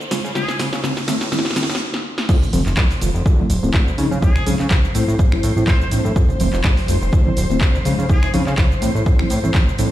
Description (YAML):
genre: filtered disco house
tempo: 124 BPM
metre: 4/4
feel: swing 55% on 16ths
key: unclear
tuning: A4 = 443 Hz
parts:
  - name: string machine, full ensemble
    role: sustained chords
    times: 0.0-9.9 s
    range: C5 to C6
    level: -30 LUFS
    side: equal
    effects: ensemble chorus, vintage 12-bit sampler grit, sidechain pumping, low-pass filter
  - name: fat analog bass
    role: bass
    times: 0.0-9.9 s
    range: D1 to Db3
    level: -21 LUFS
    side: equal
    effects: tube saturation, sidechain pumping, high-pass filter, low-pass filter
  - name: punchy analog drum machine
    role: drums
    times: 0.0-9.9 s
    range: crash cymbal, finger snaps, handclaps, hi-hat, shaker, snare drum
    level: -24 LUFS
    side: equal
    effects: sidechain pumping on perc, sidechain pumping on hats, sidechain pumping on cymbals
  - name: riser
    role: sound effects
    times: 0.0-1.8 s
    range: none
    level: -30 LUFS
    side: equal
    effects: none
  - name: mellow tine electric piano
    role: accompaniment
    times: 0.1-9.9 s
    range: Db3 to F4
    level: -24 LUFS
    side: left 1 dB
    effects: slow stereo tremolo, phaser, sidechain pumping, low-pass filter
  - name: muted trumpet section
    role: melody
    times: 0.4-0.6, 4.2-8.3 s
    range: Ab4 to C5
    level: -30 LUFS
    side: left 1 dB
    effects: sidechain pumping, low-pass filter, tape echo
  - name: electronic kick drum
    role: drums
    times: 2.3-9.7 s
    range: none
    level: -16 LUFS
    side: equal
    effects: none
  - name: tambourine and congas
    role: percussion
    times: 2.3-9.9 s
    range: none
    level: -27 LUFS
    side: right 2 dB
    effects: sidechain pumping on perc, low-pass filter on perc
room: light reverb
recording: played on a big sound system in a bare room, large studio reverb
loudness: -15 LUFS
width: side -14 dB against mid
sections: 0.0-2.3 A section; 2.3-9.9 B section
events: build-up 0.0-2.3; drum fill 0.0-1.8, 1.9-2.3; riser 0.0-1.8; filter sweep 0.0-2.3; stop 1.8-2.3; drop 2.3-9.9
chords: 0.1 Dbmaj7; 1.1 Am; 2.3 F69; 3.3 Dm7; 4.0 Dbmaj9; 5.0 Am7; 6.2 F69; 7.1 Dm7; 7.9 Dbmaj9; 8.8 Am7